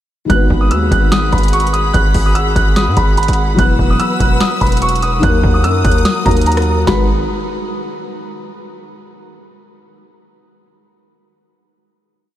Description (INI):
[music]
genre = hip hop, trap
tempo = 146 BPM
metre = 4/4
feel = half-time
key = G# minor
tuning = A4 = 439 Hz
[part]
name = dark grand piano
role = melody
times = 0.3-7.1 s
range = A#5 to F#6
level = -19 LUFS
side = right 2 dB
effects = tape echo
[part]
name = felt-muted upright piano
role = accompaniment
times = 0.3-7.1 s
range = D#3 to B4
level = -20 LUFS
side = left 2 dB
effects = analog chorus
[part]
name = dark studio string section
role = sustained chords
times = 0.3-7.1 s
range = B3 to E6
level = -22 LUFS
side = left 2 dB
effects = none
[part]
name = distorted 808-style bass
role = bass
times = 0.3-7.3 s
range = E1 to G#2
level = -16 LUFS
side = equal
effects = distortion
[part]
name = booming analog drum machine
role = drums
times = 0.3-7.0 s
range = hi-hat, kick drum, rim click, snare drum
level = -17 LUFS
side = equal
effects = overdrive
[sound]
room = light reverb, studio reverb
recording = none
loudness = -11 LUFS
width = side -12 dB against mid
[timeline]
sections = 0.3-6.9 hook; 6.9-8.5 final chord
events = none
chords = 0.3 G#m7; 3.6 Esus2; 5.2 D#m; 6.9 G#m7